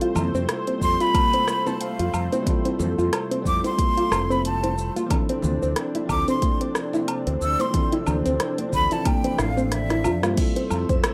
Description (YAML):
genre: sunset chillout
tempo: 91 BPM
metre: 4/4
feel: swing 57% on 16ths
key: unclear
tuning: A4 = 440 Hz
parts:
  - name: bell-like tine electric piano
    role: accompaniment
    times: 0.0-11.1 s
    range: E3 to A4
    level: -32 LUFS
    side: equal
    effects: delay
  - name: lush unison pad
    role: sustained chords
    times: 0.0-11.1 s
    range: C3 to C5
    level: -34 LUFS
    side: equal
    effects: chorus, plate reverb
  - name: soft round pluck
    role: arpeggios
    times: 0.0-11.0 s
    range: C4 to F4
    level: -30 LUFS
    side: equal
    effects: chorus, delay, plate reverb
  - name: deep house drum kit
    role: drums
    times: 0.0-11.1 s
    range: crash cymbal, hi-hat, rim click, shaker, woodblock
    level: -31 LUFS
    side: equal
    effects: none
  - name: congas and bongos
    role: percussion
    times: 0.1-10.4 s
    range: none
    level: -34 LUFS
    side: equal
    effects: none
  - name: mellow fretless electric bass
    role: bass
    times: 0.2-11.0 s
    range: F1 to G2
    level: -29 LUFS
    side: equal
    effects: subtle chorus
  - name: breathy jazz flute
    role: melody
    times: 0.8-10.2 s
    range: E5 to E6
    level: -28 LUFS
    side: equal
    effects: delay
  - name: electronic kick drum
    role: drums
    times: 0.8-11.0 s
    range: none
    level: -27 LUFS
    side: equal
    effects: none
  - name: wind-like tuned noise texture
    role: texture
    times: 10.5-11.1 s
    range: E6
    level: -49 LUFS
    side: equal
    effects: none
room: wet studio reverb, RT60 0.6 s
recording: rough home demo mix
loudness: -23 LUFS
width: mono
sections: 0.0-10.4 A section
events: drum fill 9.7-10.4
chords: 0.0 Fmaj7; 5.1 Dm9; 10.4 Fmaj7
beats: 0.49 1.15 1.81 | 2.46 3.12 3.78 4.44 | 5.10 5.76 6.42 7.08 | 7.74 8.40 9.06 9.72 | 10.38 11.04